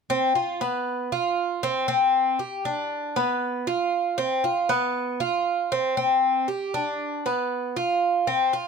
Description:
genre	latin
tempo	117 BPM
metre	4/4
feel	straight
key	unclear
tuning	A4 = 440 Hz
part	Cuban tres	solo	0.1-8.7 s	B3 to G4	-22 LUFS	equal	none
room	light reverb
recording	close, detailed microphones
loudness	-22 LUFS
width	side -5 dB against mid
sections	0.0-8.7 A section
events	none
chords	none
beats	0.35 0.86 1.38 | 1.89 2.40 2.91 3.42 | 3.93 4.44 4.95 5.46 | 5.97 6.49 7.00 7.51 | 8.02 8.53

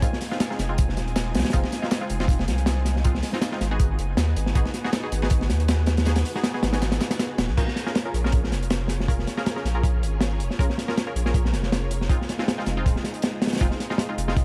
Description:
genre	drum and bass, jungle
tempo	159 BPM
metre	4/4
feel	swing 55% on 16ths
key	Bb minor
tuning	A4 = 441 Hz
part	soft string machine	sustained chords	0.0-14.4 s	Ab3 to Db5	-37 LUFS	equal	ensemble chorus
part	filtered dub chord stab	stabs	0.0-14.4 s	Ab3 to Bb4	-35 LUFS	equal	chorus, dub echo
part	breakbeat sampler-style drum kit	drums	0.0-7.5 s	hi-hat, snare drum, tambourine	-41 LUFS	equal	high-pass filter on perc, high-pass filter on snare, high-pass filter on hats, high-pass filter on room
part	crunchy breakbeat drum kit	drums	0.0-14.4 s	crash cymbal, hi-hat, kick drum, snare drum	-26 LUFS	equal	none
part	drifting glass-harmonics texture	texture	0.0-7.6 s	Ab5	-45 LUFS	equal	chorus, built-in reverb
part	saturated sub bass	bass	0.6-14.4 s	Eb1 to Eb2	-27 LUFS	equal	none
room	studio reverb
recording	dark, warm production, vinyl crackle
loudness	-24 LUFS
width	mono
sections	0.0-7.6 A section; 7.6-14.4 A section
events	drop 0.0-7.6, 7.6-14.4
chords	0.0 Fm7; 3.8 Abm7; 7.6 Bbm7; 12.1 Fm7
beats	| 0.03 0.40 0.78 1.16 | 1.53 1.91 2.29 2.67 | 3.04 3.42 3.80 4.18 | 4.55 4.93 5.31 5.69 | 6.06 6.44 6.82 7.20 | 7.57 7.95 8.33 8.71 | 9.08 9.46 9.84 10.21 | 10.59 10.97 11.35 11.72 | 12.10 12.48 12.86 13.23 | 13.61 13.99 14.37

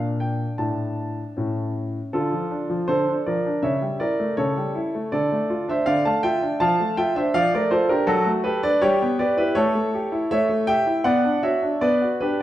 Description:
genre	classical-period piano sonatina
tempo	80 BPM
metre	2/4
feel	straight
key	D minor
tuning	A4 = 440 Hz
part	clear concert grand piano	solo	0.0-12.4 s	A2 to A5	-20 LUFS	equal	none
room	wet recital hall reverb, RT60 1.4 s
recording	dark, warm production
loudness	-20 LUFS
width	side -13 dB against mid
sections	0.0-2.1 A section; 2.1-12.4 B section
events	none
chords	0.0 Gm/Bb; 0.6 D5/A; 1.4 A; 2.1 Dm; 3.6 A7/C#; 5.1 Dm; 6.6 Dm/F; 8.1 D/F#; 8.8 Em/G; 9.6 A7; 11.1 Bm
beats	| 0.59 1.36 | 2.13 2.88 | 3.63 4.37 | 5.12 5.86 | 6.61 7.34 | 8.08 8.82 | 9.57 10.31 | 11.06 11.82

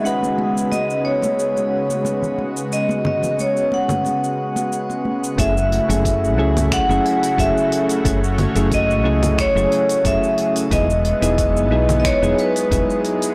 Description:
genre	sunset chillout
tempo	90 BPM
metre	4/4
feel	swing 53% on 16ths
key	F# dorian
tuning	A4 = 440 Hz
part	vibraphone with medium hard mallets	melody	0.0-13.0 s	B4 to F#5	-23 LUFS	equal	digital delay, shimmer reverb
part	soft electric-piano-like synth keys	accompaniment	0.0-13.3 s	F#3 to B4	-25 LUFS	equal	chorus, tremolo, digital delay, shimmer reverb
part	lush unison pad	sustained chords	0.0-13.3 s	C#3 to C#5	-27 LUFS	equal	chorus, shimmer reverb
part	deep house drum kit	drums	0.1-13.3 s	cabasa, congas, finger snaps, hi-hat	-29 LUFS	equal	soft clipping on snare
part	congas	percussion	0.2-5.2 s	none	-32 LUFS	equal	none
part	woody fretless electric bass	bass	5.4-12.8 s	E1 to C#2	-23 LUFS	equal	tube saturation
part	electronic kick drum	drums	5.4-12.9 s	none	-27 LUFS	equal	none
room	moderate plate reverb, RT60 1.8 s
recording	blown-out, overdriven recording, overdrive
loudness	-18 LUFS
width	mono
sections	0.0-5.4 A section; 5.4-13.3 B section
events	none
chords	0.1 C#7sus4; 5.4 F#m7; 10.7 Emaj7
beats	| 0.05 0.72 1.38 2.05 | 2.72 3.38 4.05 4.72 | 5.38 6.05 6.72 7.38 | 8.05 8.72 9.38 10.05 | 10.72 11.38 12.05 12.72

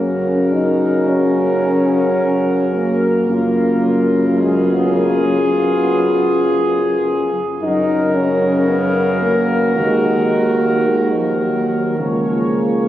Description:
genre	classical, hymn-like piece for brass band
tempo	55 BPM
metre	4/4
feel	rubato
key	F# major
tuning	A4 = 440 Hz
part	dark trumpet section	melody	0.0-12.9 s	G#4 to C#5	-21 LUFS	left 2 dB	none
part	warm French horn section	second line	0.0-12.9 s	E#4 to G#4	-22 LUFS	right 4 dB	none
part	dark euphonium	accompaniment	0.0-12.9 s	E#3 to D#4	-19 LUFS	left 1 dB	none
part	warm trombone	accompaniment	0.0-12.9 s	C#3 to E#3	-26 LUFS	right 2 dB	none
part	mellow tuba	bass	0.0-12.9 s	C#2 to F#2	-18 LUFS	left 1 dB	none
room	wet cathedral reverb, RT60 4.4 s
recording	recorded on a phone in the room, club reverb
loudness	-14 LUFS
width	side -13 dB against mid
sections	0.0-12.9 A section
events	none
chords	0.0 F#; 3.3 C#7/F#; 7.6 F#; 9.8 D#m; 12.0 C#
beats	1.08 2.18 | 3.29 4.38 5.45 6.53 | 7.61 8.68 9.76 10.86 | 11.99

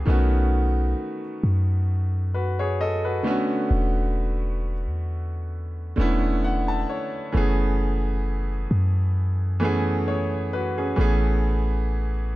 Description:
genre	R&B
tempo	66 BPM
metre	4/4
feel	swing 54% on 16ths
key	unclear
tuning	A4 = 442 Hz
part	clear concert grand piano	accompaniment	0.0-12.4 s	D3 to A5	-26 LUFS	right 1 dB	none
part	clean 808-style bass	bass	0.0-12.4 s	E1 to F#2	-23 LUFS	equal	none
room	light reverb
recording	none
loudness	-21 LUFS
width	side -17 dB against mid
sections	0.0-12.4 A section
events	grand piano fill 6.0-7.3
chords	0.1 B7; 3.3 E13sus4; 7.3 F#m11; 11.0 Amaj9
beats	| 0.07 0.98 1.89 2.80 | 3.71 4.62 5.53 6.43 | 7.34 8.25 9.16 10.07 | 10.98 11.89

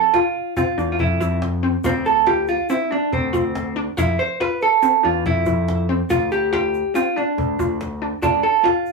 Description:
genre	progressive instrumental, band music in an uneven meter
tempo	141 BPM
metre	5/4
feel	straight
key	D minor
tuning	A4 = 440 Hz
part	vintage hollow-body jazz guitar	melody	0.0-8.9 s	C4 to C5	-18 LUFS	right 3 dB	none
part	resonant blip pluck	arpeggios	0.1-8.9 s	C4 to F4	-24 LUFS	left 3 dB	chorus
part	cajon	drums	0.1-8.9 s	none	-29 LUFS	left 1 dB	none
part	tube shaker	percussion	0.1-8.9 s	none	-45 LUFS	left 7 dB	none
part	overdriven picked electric bass	bass	0.8-8.4 s	D2 to F2	-24 LUFS	left 1 dB	none
room	moderate studio reverb, RT60 0.5 s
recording	rough rehearsal-room recording, small room ambience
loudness	-17 LUFS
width	side -3 dB against mid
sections	0.0-8.9 A section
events	none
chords	0.0 F5; 1.8 Dm7; 4.0 Fmaj7; 6.1 Dm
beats	0.14 0.57 0.99 1.42 | 1.85 2.28 2.70 3.13 3.56 | 3.98 4.41 4.83 5.26 5.68 | 6.11 6.53 6.96 7.38 7.80 | 8.23 8.65

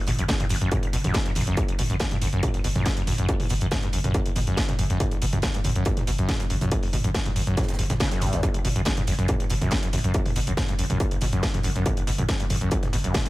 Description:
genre	driving peak-time techno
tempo	140 BPM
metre	4/4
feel	straight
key	unclear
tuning	A4 = 440 Hz
part	overdriven acid bass	riff	0.0-13.3 s	F#1 to C#3	-27 LUFS	equal	distortion, lush chorus, sidechain pumping, tape echo
part	growling 808-style bass	bass	0.1-13.1 s	F#1	-28 LUFS	equal	tube saturation, sidechain pumping, low-pass filter
part	deep reggae drum kit	drums	0.1-13.3 s	hi-hat, snare drum	-40 LUFS	right 3 dB	none
part	techno drum kit	drums	0.1-13.3 s	hi-hat, snare drum, toms	-29 LUFS	equal	none
part	electronic kick drum	drums	0.3-13.2 s	none	-26 LUFS	equal	distortion
room	little or no reverb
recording	none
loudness	-22 LUFS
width	side -18 dB against mid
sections	0.0-13.3 A section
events	none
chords	0.0 F#5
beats	0.29 0.72 1.14 | 1.57 2.00 2.43 2.86 | 3.29 3.72 4.14 4.57 | 5.00 5.43 5.86 6.29 | 6.72 7.14 7.57 8.00 | 8.43 8.86 9.29 9.72 | 10.14 10.57 11.00 11.43 | 11.86 12.29 12.72 13.14

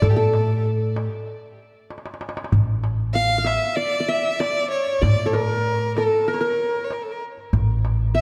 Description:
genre	Arabic maqam ensemble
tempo	96 BPM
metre	4/4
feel	straight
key	A maqam hijaz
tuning	A4 = 440 Hz
part	rich violin	melody	0.0-8.2 s	G4 to F5	-27 LUFS	equal	tape echo
part	qanun	second line	0.0-8.2 s	A4 to F5	-26 LUFS	equal	none
part	upright bass	bass	0.0-8.2 s	A1 to A2	-25 LUFS	equal	none
part	darbuka	percussion	0.0-8.2 s	none	-26 LUFS	equal	none
room	moderate concert hall reverb, RT60 1.8 s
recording	dark, warm production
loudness	-21 LUFS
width	mono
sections	0.0-8.2 A section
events	drum fill 1.9-2.5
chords	none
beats	| 0.02 0.64 1.27 1.89 | 2.52 3.15 3.77 4.40 | 5.02 5.65 6.28 6.90 | 7.53 8.16

